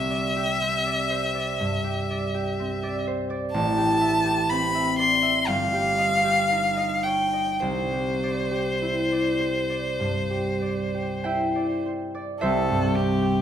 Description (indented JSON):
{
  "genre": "classical, impressionist duo for violin and harp",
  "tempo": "45-63 BPM",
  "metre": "4/4",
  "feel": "rubato",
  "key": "C major",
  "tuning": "A4 = 440 Hz",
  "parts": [
    { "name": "rich violin", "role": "melody", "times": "0.0-13.4 s", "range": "G4 to C6", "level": "-24 LUFS", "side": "left 1 dB", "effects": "none" },
    { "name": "concert harp", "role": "accompaniment", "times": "0.0-13.4 s", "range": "G1 to G5", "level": "-25 LUFS", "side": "right 1 dB", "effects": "none" }
  ],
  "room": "moderate recital hall reverb, RT60 1.4 s",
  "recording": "none",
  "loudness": "-22 LUFS",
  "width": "side -9 dB against mid",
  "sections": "0.0-12.4 A section; 12.4-13.4 B section",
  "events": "none",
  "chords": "0.0 Cadd9; 3.5 Am7; 5.5 Eb9/G; 7.6 Cadd9; 12.4 C6"
}